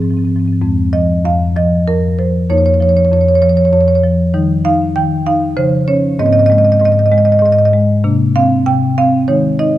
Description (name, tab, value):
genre	classical, contemporary piece for solo marimba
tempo	97 BPM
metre	3/4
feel	rubato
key	F minor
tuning	A4 = 440 Hz
part	marimba with medium mallets	solo	0.0-9.8 s	F2 to G5	-10 LUFS	equal	none
room	wet recital hall reverb, RT60 1.7 s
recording	dark, warm production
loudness	-10 LUFS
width	side -14 dB against mid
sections	0.6-9.8 A section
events	none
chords	0.0 Ab6; 0.6 Fm; 2.5 Db69/F; 4.3 Eb; 5.6 Dbmaj9; 6.2 Abadd9; 8.0 Csus2; 9.3 Eb7sus4